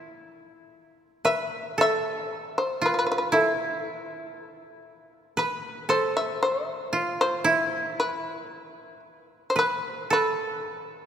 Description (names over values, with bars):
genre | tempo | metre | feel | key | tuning
japanese traditional, Japanese chamber music | 58 BPM | 4/4 | rubato | A hirajoshi | A4 = 440 Hz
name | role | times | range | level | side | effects
shamisen | melody | 0.0-11.1 s | E4 to E5 | -26 LUFS | left 2 dB | none
koto | second line | 0.0-11.1 s | E4 to B4 | -27 LUFS | right 2 dB | none
room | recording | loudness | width
wet church reverb, RT60 3.4 s | none | -23 LUFS | side -9 dB against mid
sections
0.0-11.1 A section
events
none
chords
none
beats
0.21 | 1.26 2.31 3.32 4.33 | 5.37 6.41 7.45 8.50 | 9.56 10.61